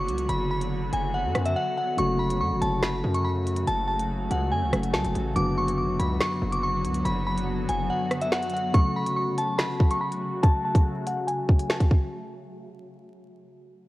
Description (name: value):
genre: hip hop, drill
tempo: 142 BPM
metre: 4/4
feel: half-time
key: F# minor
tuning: A4 = 436 Hz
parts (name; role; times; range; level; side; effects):
- glassy synth bell; melody; 0.0-12.1 s; E5 to D6; -28 LUFS; equal; chorus, low-pass filter, tape echo
- granular cloud pad; sustained chords; 0.0-12.1 s; C#3 to F#4; -33 LUFS; equal; built-in reverb, low-pass filter
- distorted 808-style bass; bass; 0.0-7.9 s; F#1 to F#2; -29 LUFS; equal; distortion
- drill drum kit; drums; 0.1-12.0 s; finger snaps, hi-hat, kick drum, rim click, snare drum; -23 LUFS; equal; none
- soft electric-piano-like synth keys; accompaniment; 2.0-12.1 s; F#2 to F#4; -30 LUFS; left 1 dB; chorus, low-pass filter
room: light reverb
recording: worn, warbling old tape, cassette tape, vinyl crackle, warbly pitch drift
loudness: -23 LUFS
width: side -17 dB against mid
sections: 0.0-8.7 A section; 8.7-12.1 B section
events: drums muted 1.6-2.0; kick muted 7.9-8.7; filter sweep 8.7-12.1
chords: 0.0 Bm/F#; 2.0 F#m; 5.4 Bm/F#; 8.7 F#m